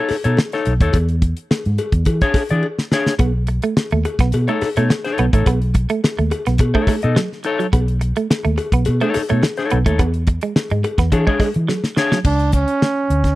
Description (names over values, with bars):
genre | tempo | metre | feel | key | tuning
funk | 106 BPM | 4/4 | straight | B mixolydian | A4 = 438 Hz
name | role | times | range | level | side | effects
clean electric guitar | accompaniment | 0.0-12.2 s | D4 to D#5 | -20 LUFS | left 4 dB | none
vintage muted fingered electric bass | bass | 0.1-13.4 s | A1 to E3 | -18 LUFS | equal | none
damped 70s drum kit | drums | 0.1-13.4 s | crash cymbal, hi-hat, kick drum, snare drum | -18 LUFS | equal | none
cowbell | percussion | 0.1-11.8 s | none | -27 LUFS | left 4 dB | none
semi-hollow electric guitar | riff | 3.2-12.2 s | F#3 to B3 | -22 LUFS | right 5 dB | none
bright trombone | melody | 12.3-13.4 s | C#4 to D4 | -18 LUFS | right 3 dB | none
room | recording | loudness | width
small room ambience | dry, close 1970s-style studio recording | -15 LUFS | side -17 dB against mid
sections
0.0-12.3 A section; 12.3-13.4 B section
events
drum fill 2.6-3.2, 11.7-12.3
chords
0.0 B9; 0.9 E6; 3.2 B9; 10.0 E13; 12.3 N.C.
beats
0.37 | 0.94 1.50 2.07 2.63 | 3.20 3.77 4.33 4.90 | 5.46 6.03 6.59 7.16 | 7.73 8.29 8.86 9.42 | 9.99 10.55 11.12 11.69 | 12.25 12.82